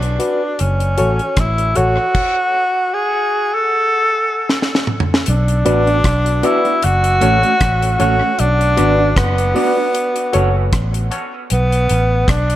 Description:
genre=dub reggae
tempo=77 BPM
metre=4/4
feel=swing 55% on 16ths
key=B dorian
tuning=A4 = 440 Hz
part: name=breathy tenor saxophone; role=melody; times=0.0-12.6 s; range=B3 to A4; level=-16 LUFS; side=equal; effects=tape echo
part: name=vintage muted fingered electric bass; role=bass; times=0.0-12.6 s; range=F#1 to B1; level=-16 LUFS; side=equal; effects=none
part: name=deep reggae drum kit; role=drums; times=0.0-12.6 s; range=crash cymbal, hi-hat, kick drum, rim click, snare drum, toms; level=-19 LUFS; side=equal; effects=none
part: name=bright reed electric piano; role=stabs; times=0.2-12.1 s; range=F#4 to D5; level=-22 LUFS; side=left 2 dB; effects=high-pass filter, tape echo
part: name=mellow electric guitar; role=accompaniment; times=5.7-11.4 s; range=A3 to F#4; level=-23 LUFS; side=right 4 dB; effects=spring reverb, high-pass filter, tape echo
room=light reverb, studio ambience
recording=none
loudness=-13 LUFS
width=side -13 dB against mid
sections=0.0-5.3 A section; 5.3-12.6 B section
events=break 0.0-5.3; drum fill 4.5-5.3; filter sweep 8.4-12.6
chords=0.0 Bm; 0.6 F#m; 2.1 N.C.; 5.3 Bm; 6.8 F#m; 8.4 Bm; 9.9 F#m; 11.5 Bm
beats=0.59 1.37 | 2.15 2.93 3.71 4.49 | 5.27 6.05 6.83 7.61 | 8.39 9.16 9.94 10.72 | 11.50 12.28

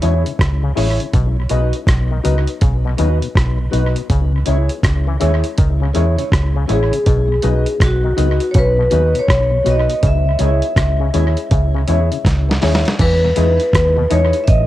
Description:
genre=roots reggae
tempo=81 BPM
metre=4/4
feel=swing 63% on 16ths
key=unclear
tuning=A4 = 440 Hz
part: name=mellow electric guitar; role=accompaniment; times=0.0-14.3 s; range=B3 to D#5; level=-27 LUFS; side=right 9 dB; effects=tremolo, cassette tape, tape echo
part: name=mellow tonewheel organ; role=accompaniment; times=0.0-14.2 s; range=E2 to E4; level=-27 LUFS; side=left 8 dB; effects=slow rotary speaker, cassette tape, analog delay
part: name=muted clav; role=arpeggios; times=0.0-14.3 s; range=G#2 to E3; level=-30 LUFS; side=left 8 dB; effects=auto-wah, cassette tape
part: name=dark grand piano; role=stabs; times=0.0-14.3 s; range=D#4 to E5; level=-25 LUFS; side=left 9 dB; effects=cassette tape
part: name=vintage muted fingered electric bass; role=bass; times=0.0-14.7 s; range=A1 to E2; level=-16 LUFS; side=equal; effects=none
part: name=dusty soul sampler-style drum kit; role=drums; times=0.0-14.7 s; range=crash cymbal, hi-hat, kick drum, rim click, snare drum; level=-17 LUFS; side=equal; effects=analog delay
part: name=vibraphone with hard mallets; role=melody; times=6.7-14.7 s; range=F#4 to E5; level=-18 LUFS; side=equal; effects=cassette tape, tape echo
room=digital ambience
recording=home recording on cassette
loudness=-13 LUFS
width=side -14 dB against mid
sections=0.0-13.0 A section; 13.0-14.7 B section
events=drum fill 12.3-13.0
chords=0.0 C#m; 1.1 B; 4.1 C#m; 7.1 B; 10.0 C#m; 13.0 Emaj7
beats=0.39 | 1.13 1.87 2.62 3.36 | 4.10 4.84 5.58 6.32 | 7.06 7.80 8.55 9.29 | 10.03 10.77 11.51 12.25 | 12.99 13.74 14.48

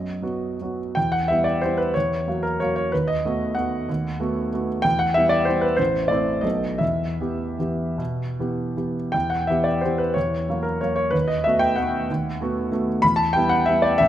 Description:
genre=classical, piano waltz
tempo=149-201 BPM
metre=3/4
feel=rubato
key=E minor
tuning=A4 = 440 Hz
part: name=warm concert grand piano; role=solo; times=0.0-14.1 s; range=A1 to B5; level=-20 LUFS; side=equal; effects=none
room=moderate concert hall reverb, RT60 2.1 s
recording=close, detailed microphones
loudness=-20 LUFS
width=side -11 dB against mid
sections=0.0-9.1 A section; 9.1-14.1 A section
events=none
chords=0.0 B; 1.0 Em; 1.9 F#7/E; 2.9 B7/D#; 4.8 Em; 5.8 Am; 6.4 B7; 6.8 Em; 10.2 F#7/E; 11.1 B7/D#; 13.0 Em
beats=0.23 0.60 | 0.97 1.30 1.63 | 1.95 2.26 2.59 | 2.92 3.24 3.57 | 3.89 4.20 4.53 | 4.85 5.17 5.48 | 5.79 6.10 6.44 | 6.81 7.20 7.60 | 7.99 8.38 8.77 | 9.14 9.49 9.83 | 10.16 10.48 10.82 | 11.14 11.45 11.77 | 12.09 12.40 12.72 | 13.03 13.35 13.68 | 14.00

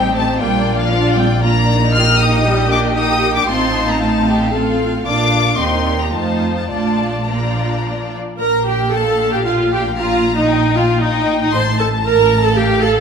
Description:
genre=quick classical-period movement for string orchestra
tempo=115 BPM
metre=3/4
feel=rubato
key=Bb major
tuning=A4 = 440 Hz
part: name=rich chamber violin section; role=melody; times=0.0-13.0 s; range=F5 to F6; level=-20 LUFS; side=left 5 dB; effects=none
part: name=rich chamber violin section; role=second line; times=0.0-12.9 s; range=D4 to C6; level=-22 LUFS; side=left 2 dB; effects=none
part: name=rich chamber viola section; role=accompaniment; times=0.0-13.0 s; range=F3 to C5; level=-18 LUFS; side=right 2 dB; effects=none
part: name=clear studio double bass section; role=bass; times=0.0-13.0 s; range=A1 to F2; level=-20 LUFS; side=right 2 dB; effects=none
part: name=warm studio cello section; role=bass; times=0.0-13.0 s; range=A2 to F4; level=-21 LUFS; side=right 2 dB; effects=none
room=moderate scoring stage reverb, RT60 1.6 s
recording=none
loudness=-13 LUFS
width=side -6 dB against mid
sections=0.0-8.4 A section; 8.4-13.0 B section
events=none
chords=0.4 Bb; 1.9 Eb/Bb; 3.5 F7/A; 5.1 Bb; 5.6 Eb; 6.1 F7; 6.7 Bb; 8.4 Bb5; 11.5 F/A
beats=| 0.41 0.92 1.43 | 1.94 2.45 2.97 | 3.49 4.00 4.53 | 5.06 5.59 6.14 | 6.70 7.28 7.84 | 8.39 8.92 9.45 | 9.98 10.49 11.02 | 11.53 12.04 12.56

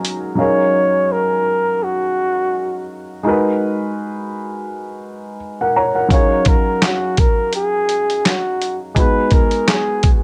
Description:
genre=lo-fi hip hop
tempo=84 BPM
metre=4/4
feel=swing 56% on 16ths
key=F# major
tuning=A4 = 439 Hz
part: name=dark upright piano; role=accompaniment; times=0.0-10.2 s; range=F#3 to A#5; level=-23 LUFS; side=equal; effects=low-pass filter
part: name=dusty soul sampler-style drum kit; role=drums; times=0.0-0.2, 6.1-10.2 s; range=handclaps, hi-hat, kick drum, snare drum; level=-17 LUFS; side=equal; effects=none
part: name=breathy flugelhorn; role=melody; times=0.4-10.1 s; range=F#4 to C#5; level=-20 LUFS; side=equal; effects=low-pass filter
room=moderate studio reverb, RT60 0.6 s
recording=none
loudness=-17 LUFS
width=mono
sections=0.4-10.2 A section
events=break 0.0-0.4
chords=0.4 F#maj13; 3.2 G#m9; 6.1 F#maj13; 9.0 G#m7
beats=| 0.39 1.11 1.82 2.54 | 3.25 3.96 4.68 5.39 | 6.11 6.82 7.54 8.25 | 8.96 9.68

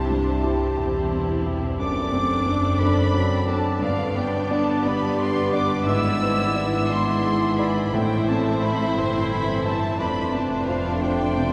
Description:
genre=classical, romantic movement for piano and orchestra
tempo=58 BPM (dotted quarters)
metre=12/8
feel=rubato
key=unclear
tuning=A4 = 440 Hz
part: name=rich studio violin section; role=melody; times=0.0-11.5 s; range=F5 to E6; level=-36 LUFS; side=equal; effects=none
part: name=warm baby grand piano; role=melody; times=0.0-11.5 s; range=F2 to D5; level=-28 LUFS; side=equal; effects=none
part: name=clear clarinet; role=second line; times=0.0-11.5 s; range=D4 to E4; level=-36 LUFS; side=equal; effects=none
part: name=clear oboe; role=second line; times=0.0-11.5 s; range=C5 to D5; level=-37 LUFS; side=equal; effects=none
part: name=hollow silver concert flute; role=second line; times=0.0-11.5 s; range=F5 to E6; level=-32 LUFS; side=equal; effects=none
part: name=rich studio violin section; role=second line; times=0.0-11.5 s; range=G4 to E5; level=-36 LUFS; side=equal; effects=none
part: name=mellow bassoon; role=accompaniment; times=0.0-11.5 s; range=G3 to C4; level=-35 LUFS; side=equal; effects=none
part: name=rich studio viola section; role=accompaniment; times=0.0-11.5 s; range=A3 to G4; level=-32 LUFS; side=equal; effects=none
part: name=warm French horn section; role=sustained chords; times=0.0-11.5 s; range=G3 to E4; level=-36 LUFS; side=equal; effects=none
part: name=rich studio cello section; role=bass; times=0.0-11.5 s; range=E2 to C3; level=-32 LUFS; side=equal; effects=none
part: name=rich studio double bass section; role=bass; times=0.0-11.5 s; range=E1 to C2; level=-31 LUFS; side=equal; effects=none
part: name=timpani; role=percussion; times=3.8-4.8 s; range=G2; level=-40 LUFS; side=equal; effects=none
room=wet cathedral reverb, RT60 5.6 s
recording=heard from further back in the room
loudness=-22 LUFS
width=mono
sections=0.0-11.5 A section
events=none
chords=0.0 C; 1.8 D7/F#; 3.8 G; 5.9 E7/G#; 7.9 Am; 10.0 Dm7/F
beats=0.77 | 1.81 2.81 3.83 4.85 | 5.87 6.90 7.94 8.97 | 9.99 11.01

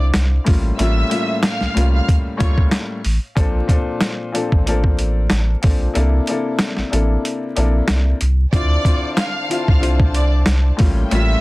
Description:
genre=hip hop, boom-bap hip-hop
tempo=93 BPM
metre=4/4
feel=swing 55% on 16ths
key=D minor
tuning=A4 = 441 Hz
part: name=warm upright piano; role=accompaniment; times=0.0-11.4 s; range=A2 to A4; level=-22 LUFS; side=left 2 dB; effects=cassette tape, high-pass filter, low-pass filter
part: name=saturated sub bass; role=bass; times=0.0-11.4 s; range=A1 to D2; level=-17 LUFS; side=equal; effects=none
part: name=boom bap sampler-style drum kit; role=drums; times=0.1-11.3 s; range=hi-hat, kick drum, snare drum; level=-17 LUFS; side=equal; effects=none
part: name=warm studio violin section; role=melody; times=0.8-2.6, 8.5-11.4 s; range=C#5 to F6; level=-25 LUFS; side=right 1 dB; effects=high-pass filter, low-pass filter, digital delay
part: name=warm studio string section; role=sustained chords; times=8.5-11.4 s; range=Bb3 to A5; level=-31 LUFS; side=left 1 dB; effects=high-pass filter, low-pass filter
part: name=finger snap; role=percussion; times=9.2-10.6 s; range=none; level=-35 LUFS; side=right 3 dB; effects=none
room=little or no reverb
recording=dense, heavily limited modern master, vinyl crackle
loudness=-15 LUFS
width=side -20 dB against mid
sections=0.0-8.5 A section; 8.5-11.4 B section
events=kick muted 7.2-8.5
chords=0.5 A7b9b13; 3.4 Bbmaj9; 6.0 C13; 8.5 Dm9; 10.8 A7b9b13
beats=0.14 | 0.79 1.43 2.08 2.72 | 3.37 4.01 4.66 5.30 | 5.95 6.59 7.24 7.88 | 8.53 9.18 9.82 10.47 | 11.11

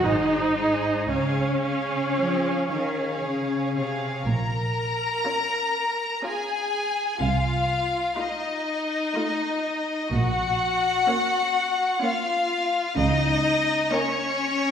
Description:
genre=classical, slow romantic movement for symphony orchestra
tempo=55-64 BPM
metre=3/4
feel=rubato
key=Db major, Bb minor from 4.3 s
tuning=A4 = 440 Hz
part: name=rich chamber violin section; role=melody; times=0.0-14.7 s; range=Db5 to Bb5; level=-26 LUFS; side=left 3 dB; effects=none
part: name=rich chamber violin section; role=second line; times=0.0-14.7 s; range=Db4 to Db5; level=-28 LUFS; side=left 1 dB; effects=none
part: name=rich chamber viola section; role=accompaniment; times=0.0-14.6 s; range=A3 to F4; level=-26 LUFS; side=right 1 dB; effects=none
part: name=rich chamber double bass section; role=bass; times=0.0-13.7 s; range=Ab1 to Db2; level=-29 LUFS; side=right 2 dB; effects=none
part: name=rich studio cello section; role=bass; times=0.0-13.7 s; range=Ab2 to F3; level=-29 LUFS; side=right 1 dB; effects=none
part: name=timpani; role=percussion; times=13.0-14.3 s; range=Db3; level=-30 LUFS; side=right 3 dB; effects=none
room=wet recital hall reverb, RT60 1.4 s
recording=recorded in a church or concert hall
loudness=-22 LUFS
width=side -8 dB against mid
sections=0.0-4.3 A section; 4.3-14.7 B section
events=none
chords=0.0 Ab; 1.1 Db; 4.3 Bbm; 7.2 F7/C; 10.1 Bbm; 13.0 Bbm/Db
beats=0.02 | 1.07 2.15 3.22 | 4.26 5.25 6.23 | 7.21 8.17 9.15 | 10.12 11.08 12.02 | 12.97 13.92

